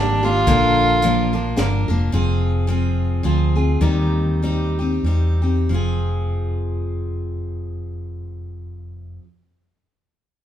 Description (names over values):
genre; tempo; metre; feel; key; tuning
acoustic folk duo or small band; 89-109 BPM; 3/4; swing 57% on 8ths; F dorian; A4 = 441 Hz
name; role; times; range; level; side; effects
warm fiddle; melody; 0.0-1.6 s; D4 to F4; -18 LUFS; right 1 dB; none
picked steel-string acoustic guitar; accompaniment; 0.0-9.3 s; Bb2 to Bb4; -22 LUFS; left 1 dB; none
fretless electric bass; bass; 0.0-9.2 s; F1 to E2; -20 LUFS; equal; none
compact cocktail drum kit; drums; 0.5-1.7 s; hi-hat, kick drum, snare drum; -24 LUFS; equal; none
room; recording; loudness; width
wet large studio reverb, RT60 1.0 s; band playing live in one room; -17 LUFS; side -10 dB against mid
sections
0.0-2.1 A section; 2.1-5.7 B section; 5.7-9.8 C section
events
slowing down 2.1-5.7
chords
0.5 Bb; 2.1 Fm; 3.8 Cm/Eb; 5.7 Fm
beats
| 0.47 1.02 1.57 | 2.12 2.68 3.24 | 3.82 4.42 5.04 | 5.70 6.37 7.05 | 7.72 8.40 9.07